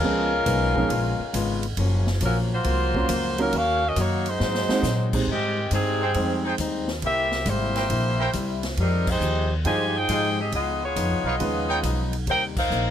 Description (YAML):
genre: jazz, big band swing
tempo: 137 BPM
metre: 4/4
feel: swing 67% on 8ths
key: Db major, Ab major from 5.3 s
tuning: A4 = 441 Hz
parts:
  - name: clear saxophone section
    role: melody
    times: 0.0-12.9 s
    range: Eb3 to Ab5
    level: -25 LUFS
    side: equal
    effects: none
  - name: picked plugged-in swing-style acoustic guitar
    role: accompaniment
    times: 0.0-12.9 s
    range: Gb2 to G4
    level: -31 LUFS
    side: left 6 dB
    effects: none
  - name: warm grand piano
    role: accompaniment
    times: 0.0-6.8, 9.7-12.1 s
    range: F3 to G5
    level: -27 LUFS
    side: right 4 dB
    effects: none
  - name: upright bass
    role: bass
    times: 0.0-12.9 s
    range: Gb1 to Bb2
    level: -26 LUFS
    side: equal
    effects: none
  - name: swinging big-band drum kit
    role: drums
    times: 0.5-12.8 s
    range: crash cymbal, hi-hat, kick drum, ride cymbal, snare drum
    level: -32 LUFS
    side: equal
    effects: none
  - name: warm trumpet section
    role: stabs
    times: 6.0-11.8 s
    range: Eb4 to G5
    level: -27 LUFS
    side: right 1 dB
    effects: none
room: little or no reverb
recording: close, detailed microphones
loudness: -21 LUFS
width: side -10 dB against mid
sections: 0.0-5.3 A section; 5.3-12.9 B section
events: drum fill 4.4-4.8; band accent 9.0, 12.5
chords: 0.0 Db7; 1.8 Gbmaj7; 3.5 Ebm7; 4.4 Ab7; 5.3 Abmaj7; 7.0 C7; 8.8 Fm9; 10.5 Db9; 12.3 Cm7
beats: | 0.03 0.46 0.90 1.34 | 1.77 2.21 2.65 3.09 | 3.52 3.96 4.40 4.84 | 5.27 5.71 6.15 6.59 | 7.03 7.46 7.90 8.34 | 8.78 9.21 9.65 10.09 | 10.53 10.96 11.40 11.84 | 12.27 12.71